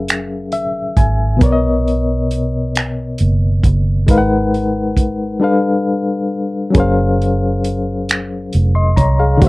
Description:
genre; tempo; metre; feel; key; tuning
slow six-eight R&B; 45 BPM (dotted quarters); 6/8; straight; unclear; A4 = 445 Hz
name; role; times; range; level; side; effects
bright reed electric piano; accompaniment; 0.0-9.5 s; Cb3 to C6; -16 LUFS; left 2 dB; fast tremolo
vintage muted fingered electric bass; bass; 0.0-9.5 s; F1 to D2; -16 LUFS; right 1 dB; none
warm soul drum kit; drums; 0.1-9.5 s; finger snaps, hi-hat, kick drum; -15 LUFS; right 1 dB; none
room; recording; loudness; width
little or no reverb; dry, close 1970s-style studio recording; -13 LUFS; side -21 dB against mid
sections
0.0-9.5 A section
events
reed electric piano fill 0.1-1.4; silent gap 5.4-6.7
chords
0.0 Gb7; 1.4 Cbmaj7; 4.1 Abm7; 5.4 G9; 6.7 Gbmaj9#11

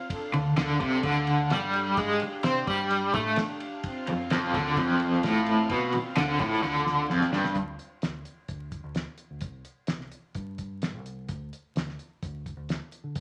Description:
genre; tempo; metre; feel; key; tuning
psychedelic rock; 129 BPM; 4/4; straight; D minor; A4 = 439 Hz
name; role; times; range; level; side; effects
chorused pulse-width pad; sustained chords; 0.0-7.5 s; C4 to F5; -39 LUFS; equal; none
cloth-damped thuddy drum kit; drums; 0.1-13.2 s; hi-hat, kick drum, ride cymbal, snare drum; -36 LUFS; equal; none
raw garage guitar; riff; 0.3-7.5 s; F2 to C4; -27 LUFS; equal; overdrive, tremolo
deep dub fingered electric bass; bass; 0.3-13.2 s; F1 to D3; -43 LUFS; equal; none
room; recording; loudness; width
moderate large studio reverb, RT60 0.9 s; vinyl crackle; -28 LUFS; mono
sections
0.0-7.6 A section; 7.6-13.2 B section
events
drum fill 6.6-7.6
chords
0.1 Dm; 3.8 F5; 7.6 N.C.; 9.4 C5; 11.3 N.C.

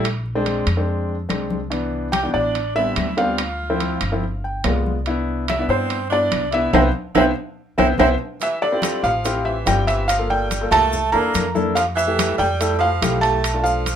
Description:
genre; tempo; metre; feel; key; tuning
Afro-Cuban jazz; 143 BPM; 4/4; straight; C major; A4 = 440 Hz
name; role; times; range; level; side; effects
warm concert grand piano; accompaniment; 0.0-13.8 s; E3 to G5; -24 LUFS; left 2 dB; none
upright bass; bass; 0.0-14.0 s; G1 to G2; -25 LUFS; equal; none
claves; percussion; 0.0-13.6 s; none; -32 LUFS; left 9 dB; none
congas; percussion; 0.0-14.0 s; none; -28 LUFS; left 6 dB; none
timbales; percussion; 0.1-14.0 s; none; -26 LUFS; right 6 dB; none
felt-muted upright piano; melody; 2.1-14.0 s; C5 to Bb5; -20 LUFS; equal; none
edgy tenor saxophone; second line; 2.1-14.0 s; D3 to G4; -26 LUFS; right 6 dB; none
maracas; percussion; 8.4-14.0 s; none; -33 LUFS; left 4 dB; none
room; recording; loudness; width
moderate small room reverb, RT60 0.5 s; minimal, uncompressed stereo recording; -17 LUFS; side -9 dB against mid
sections
0.0-8.4 A section; 8.4-14.0 B section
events
grand piano fill 4.2-5.1; band accent 6.7-8.4; drum fill 8.0-8.4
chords
0.0 Bb9; 1.7 Cmaj9; 2.6 Am11; 3.4 Dm7; 4.2 G7b9; 5.1 Cmaj9; 8.4 Dm11; 10.1 Gm9; 10.9 C13; 11.8 Fmaj9; 13.4 Bm7b5

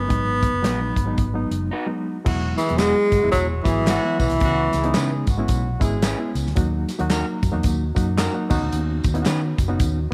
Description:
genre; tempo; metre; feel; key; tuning
uptempo 1960s-style soul; 112 BPM; 4/4; swing 60% on 8ths; unclear; A4 = 436 Hz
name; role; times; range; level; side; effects
breathy tenor saxophone; melody; 0.0-5.2 s; E3 to B3; -24 LUFS; equal; slapback echo
vintage muted fingered electric bass; bass; 0.0-10.1 s; E1 to D#3; -27 LUFS; equal; none
barky reed electric piano; accompaniment; 0.1-10.1 s; F#3 to F#4; -29 LUFS; equal; overdrive, fast tremolo
natural country drum kit; drums; 0.1-9.9 s; crash cymbal, hi-hat, kick drum, snare drum; -26 LUFS; equal; none
electric guitar through a small old amp; stabs; 0.6-9.4 s; G#3 to B4; -34 LUFS; equal; none
clear horn section; second line; 2.3-6.3 s; F#3 to G#4; -34 LUFS; equal; none
tambourine and handclaps; percussion; 2.6-10.0 s; none; -39 LUFS; equal; none
room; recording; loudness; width
light reverb, small room ambience; none; -21 LUFS; mono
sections
0.0-2.3 A section; 2.3-10.1 B section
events
none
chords
0.1 G#m7; 2.3 Eadd9; 4.4 C#m7; 6.6 D#m; 8.5 Badd9

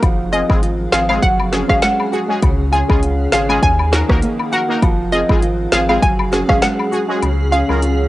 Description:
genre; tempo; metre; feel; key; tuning
dancehall; 100 BPM; 4/4; swing 56% on 16ths; F phrygian; A4 = 441 Hz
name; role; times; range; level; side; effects
granular cloud pad; sustained chords; 0.0-8.1 s; Db4 to Ab4; -26 LUFS; left 1 dB; built-in reverb, sidechain pumping
nylon-string guitar; arpeggios; 0.0-8.1 s; Db3 to Gb4; -22 LUFS; right 2 dB; tape echo
warm sub bass; bass; 0.0-8.1 s; F1 to Eb2; -20 LUFS; equal; none
afro-pop drum kit; drums; 0.0-8.0 s; hi-hat, kick drum, rim click, snare drum; -17 LUFS; equal; cassette tape
woodblock and cabasa; percussion; 0.0-7.8 s; none; -26 LUFS; left 5 dB; none
hollow square pluck; melody; 0.3-7.6 s; Eb5 to Ab5; -18 LUFS; equal; chorus, cassette tape, tape echo
synth brass stab; accompaniment; 0.3-7.8 s; Ab3 to Bb4; -22 LUFS; left 1 dB; chorus, phaser
room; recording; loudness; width
light reverb, digital ambience; home recording on cassette, nothing above 10.7 kHz; -13 LUFS; side -16 dB against mid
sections
0.0-8.1 A section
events
kick muted 7.2-8.1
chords
0.0 Fm; 1.2 Gbsus2; 2.4 Db; 3.6 Ebm; 4.8 Fm; 6.0 Gbsus2; 7.2 Db

